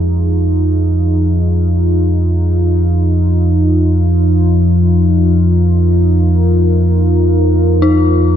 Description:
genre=dark ambient drone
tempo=free time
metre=none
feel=none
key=F minor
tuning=A4 = 440 Hz
part: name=deep dark ambient pad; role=sustained chords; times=0.0-8.4 s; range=Eb4 to Bb4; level=-17 LUFS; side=left 1 dB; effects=chorus, built-in reverb
part: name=deep rumbling drone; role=drone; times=0.0-8.4 s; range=F2 to F3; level=-11 LUFS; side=equal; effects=built-in reverb
part: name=dark detuned synth bell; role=arpeggios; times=7.8-8.4 s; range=Eb4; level=-14 LUFS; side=left 4 dB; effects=chorus
room=wet cathedral reverb, RT60 5.2 s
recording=none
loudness=-10 LUFS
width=side -10 dB against mid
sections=0.0-8.4 A section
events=none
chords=0.0 Fm

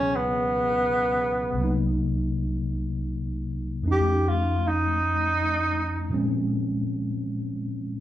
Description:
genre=jazz ballad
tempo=53 BPM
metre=4/4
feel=swing 66% on 8ths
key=unclear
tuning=A4 = 439 Hz
part: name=breathy tenor saxophone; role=melody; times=0.0-6.4 s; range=Cb4 to G4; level=-24 LUFS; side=right 1 dB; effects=none
part: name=mellow tine electric piano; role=accompaniment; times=0.0-8.0 s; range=C2 to Ab4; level=-26 LUFS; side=left 1 dB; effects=medium stereo tremolo
room=wet large studio reverb, RT60 1.1 s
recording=band playing live in one room, lossy compression artefacts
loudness=-23 LUFS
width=side -13 dB against mid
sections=0.0-8.0 A section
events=tenor saxophone solo 0.0-8.0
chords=0.0 Dbm9; 1.6 Cm7b5; 3.8 F7b13; 6.1 Bbm9

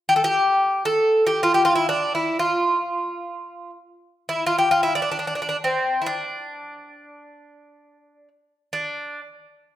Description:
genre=Turkish makam ensemble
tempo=free time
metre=none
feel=none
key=D makam nihavent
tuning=A4 = 440 Hz
part: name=Greek bouzouki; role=solo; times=0.1-9.2 s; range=C4 to A4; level=-20 LUFS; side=equal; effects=none
room=wet recital hall reverb, RT60 1.4 s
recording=none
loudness=-19 LUFS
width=side -12 dB against mid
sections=0.0-8.7 A section; 8.7-9.8 B section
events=none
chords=none

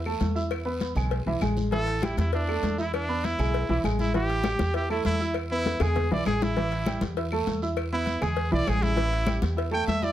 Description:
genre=latin, salsa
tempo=199 BPM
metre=4/4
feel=straight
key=unclear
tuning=A4 = 443 Hz
part: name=warm upright piano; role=accompaniment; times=0.0-10.1 s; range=E3 to E6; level=-30 LUFS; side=right 2 dB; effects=none
part: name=upright bass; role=bass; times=0.0-10.1 s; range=A1 to E2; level=-29 LUFS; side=equal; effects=none
part: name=claves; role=percussion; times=0.1-9.9 s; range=none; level=-42 LUFS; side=left 4 dB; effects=none
part: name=congas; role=percussion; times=0.1-10.1 s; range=none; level=-32 LUFS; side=left 3 dB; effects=none
part: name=cowbell and bongos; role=percussion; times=0.2-10.0 s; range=none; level=-35 LUFS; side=left 7 dB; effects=none
part: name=guiro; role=percussion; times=0.2-10.1 s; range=none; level=-45 LUFS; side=right 4 dB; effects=none
part: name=bright trumpet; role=melody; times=1.7-10.1 s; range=D4 to G5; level=-29 LUFS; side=right 1 dB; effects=none
room=light reverb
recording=none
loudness=-24 LUFS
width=side -12 dB against mid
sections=0.0-1.7 A section; 1.7-10.1 B section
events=trumpet solo 1.7-10.1; drum fill 5.7-6.6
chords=0.0 A5; 0.5 E; 1.7 A5; 2.9 E7; 4.1 A5; 5.4 E; 6.6 A5; 7.8 E; 9.0 A5

